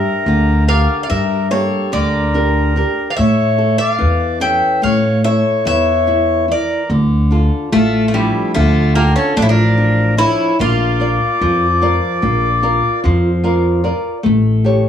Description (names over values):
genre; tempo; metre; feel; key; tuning
greek folk, Greek bouzouki band; 146 BPM (eighths); 9/8; straight; D harmonic minor; A4 = 439 Hz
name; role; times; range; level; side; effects
Greek bouzouki; melody; 0.0-13.0 s; G3 to G5; -19 LUFS; left 1 dB; none
accordion; second line; 0.0-13.0 s; E4 to E5; -20 LUFS; equal; none
flamenco guitar; accompaniment; 0.0-14.9 s; D3 to E5; -18 LUFS; left 2 dB; none
upright bass; bass; 0.3-14.8 s; A1 to A2; -16 LUFS; equal; none
room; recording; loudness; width
light reverb; small room ambience; -12 LUFS; side -9 dB against mid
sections
0.0-6.9 A section; 6.9-14.9 B section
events
speeding up 0.0-14.9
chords
0.0 Gm; 3.2 A; 6.9 Dm; 10.6 Bb; 14.3 A7